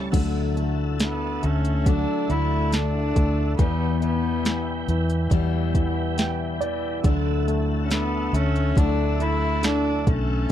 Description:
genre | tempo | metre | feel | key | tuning
pop ballad | 70 BPM | 4/4 | straight | D major | A4 = 438 Hz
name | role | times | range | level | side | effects
warm concert grand piano | accompaniment | 0.0-10.5 s | D3 to G5 | -29 LUFS | right 1 dB | none
tonewheel organ | sustained chords | 0.0-10.5 s | E4 to G5 | -36 LUFS | right 1 dB | chorus vibrato, slow rotary speaker
picked steel-string acoustic guitar | arpeggios | 0.0-10.5 s | E2 to E4 | -30 LUFS | left 15 dB | none
vintage muted fingered electric bass | bass | 0.0-10.5 s | B1 to E2 | -25 LUFS | equal | none
smooth R&B drum kit | drums | 0.1-10.5 s | crash cymbal, hi-hat, kick drum, snare drum | -22 LUFS | equal | overdrive
rich cello | melody | 1.0-10.5 s | B3 to E4 | -27 LUFS | right 1 dB | slapback echo
room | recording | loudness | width
little or no reverb | dry, close 1970s-style studio recording | -20 LUFS | side -11 dB against mid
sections
0.1-10.5 A section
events
grand piano fill 5.8-7.0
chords
0.1 Dadd9; 3.6 Em; 7.0 Dadd9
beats
| 0.13 1.00 1.87 2.73 | 3.59 4.46 5.32 6.18 | 7.05 7.91 8.77 9.63 | 10.50

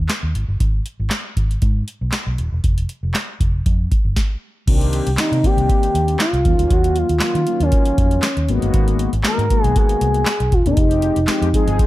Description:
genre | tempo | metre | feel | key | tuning
early-eighties boogie funk | 118 BPM | 4/4 | straight | C minor | A4 = 440 Hz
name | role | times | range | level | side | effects
vintage muted fingered electric bass | bass | 0.0-11.8 s | Eb1 to Eb3 | -20 LUFS | equal | none
booming analog drum machine | drums | 0.1-11.9 s | crash cymbal, handclaps, hi-hat, kick drum, snare drum | -18 LUFS | equal | gated reverb
mellow synth brass | accompaniment | 4.7-11.9 s | Eb3 to Ab4 | -23 LUFS | left 4 dB | chorus
expressive synth lead | melody | 5.2-11.6 s | Db4 to Bb4 | -20 LUFS | equal | chorus
room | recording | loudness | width
little or no reverb | none | -15 LUFS | side -16 dB against mid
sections
0.0-4.7 A section; 4.7-11.9 B section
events
stop 4.2-4.7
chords
0.3 N.C.; 4.7 Cm9; 6.5 Ebm9; 8.5 Abm9; 10.8 Fm9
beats
0.10 | 0.60 1.11 1.62 2.13 | 2.64 3.15 3.65 4.16 | 4.67 5.18 5.69 6.20 | 6.71 7.21 7.72 8.23 | 8.74 9.25 9.76 10.27 | 10.77 11.28 11.79

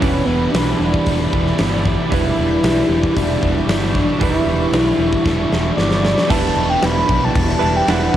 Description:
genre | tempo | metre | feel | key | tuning
rock, shoegaze and dream pop | 114 BPM | 4/4 | straight | unclear | A4 = 440 Hz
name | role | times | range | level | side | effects
mellow horn-like synth lead | melody | 0.0-8.2 s | B3 to B5 | -20 LUFS | left 1 dB | chorus, cassette tape, analog delay
granular cloud pad | sustained chords | 0.1-8.2 s | G4 to C#6 | -27 LUFS | equal | built-in reverb, phaser, cassette tape
direct-recorded clean electric guitar | riff | 0.0-8.2 s | E3 to B4 | -22 LUFS | right 8 dB | reverse reverb, cassette tape
distorted electric guitar | riff | 0.0-8.2 s | E2 to E3 | -26 LUFS | equal | overdrive, cassette tape
overdriven semi-hollow guitar | riff | 0.0-8.2 s | E3 to E4 | -26 LUFS | left 8 dB | analog chorus, cassette tape
modern bright fingered electric bass | bass | 0.0-8.2 s | E1 to B1 | -22 LUFS | equal | none
huge arena drum kit | drums | 0.0-8.2 s | crash cymbal, hi-hat, kick drum, snare drum | -20 LUFS | equal | cassette tape
room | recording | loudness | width
light reverb | home recording on cassette | -14 LUFS | side -11 dB against mid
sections
0.0-6.3 A section; 6.3-8.2 B section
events
drum fill 5.3-6.3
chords
0.0 Em7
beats
| 0.02 0.54 1.07 1.59 | 2.12 2.64 3.16 3.69 | 4.21 4.74 5.26 5.78 | 6.31 6.83 7.36 7.88

